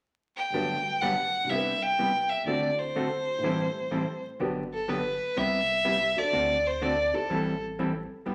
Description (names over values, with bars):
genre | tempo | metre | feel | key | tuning
country, western swing | 124 BPM | 4/4 | swing 67% on 8ths | G major | A4 = 440 Hz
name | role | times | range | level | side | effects
clear fiddle | melody | 0.4-7.6 s | A4 to G5 | -29 LUFS | equal | none
archtop guitar, miked and amplified | accompaniment | 0.5-8.3 s | G2 to A4 | -34 LUFS | equal | none
dark upright piano | accompaniment | 0.5-7.3 s | C2 to C5 | -39 LUFS | equal | none
warm sub bass | bass | 4.4-8.3 s | G1 to D2 | -46 LUFS | equal | none
room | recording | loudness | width
wet large studio reverb, RT60 0.8 s | vinyl crackle | -28 LUFS | mono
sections
0.5-4.4 A section; 4.4-8.3 B section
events
none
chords
0.0 N.C.; 0.5 Gmaj7; 1.5 Cmaj7; 2.5 D7; 3.4 Am7; 4.4 Gmaj7; 5.4 Cmaj7; 6.3 D7; 7.3 Am7